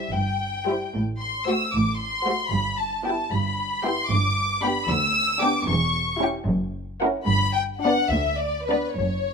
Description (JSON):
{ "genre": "quick classical-period movement for string orchestra", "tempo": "76 BPM (dotted quarters)", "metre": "6/8", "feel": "rubato", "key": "E minor", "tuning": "A4 = 439 Hz", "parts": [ { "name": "rich studio violin section", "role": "melody", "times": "0.0-9.3 s", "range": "B4 to E6", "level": "-24 LUFS", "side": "left 3 dB", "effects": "none" }, { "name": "warm studio violin section", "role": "second line", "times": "0.0-8.9 s", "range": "F#4 to G5", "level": "-28 LUFS", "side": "left 1 dB", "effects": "none" }, { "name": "dark studio viola section", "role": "accompaniment", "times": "0.0-8.9 s", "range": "G3 to F#4", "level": "-28 LUFS", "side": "equal", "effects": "none" }, { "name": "warm chamber double bass section", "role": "bass", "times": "0.1-9.3 s", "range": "E1 to D2", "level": "-29 LUFS", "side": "right 3 dB", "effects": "none" }, { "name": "warm studio cello section", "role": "bass", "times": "0.1-9.3 s", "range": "D2 to A2", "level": "-28 LUFS", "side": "right 2 dB", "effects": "none" } ], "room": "light reverb", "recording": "minimal, uncompressed stereo recording", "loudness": "-21 LUFS", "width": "side -5 dB against mid", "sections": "0.0-9.3 A section", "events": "none", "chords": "0.0 C; 0.9 F#dim/A; 2.5 Em/G; 4.1 G; 5.7 C#dim/E; 6.5 F#7; 7.3 G" }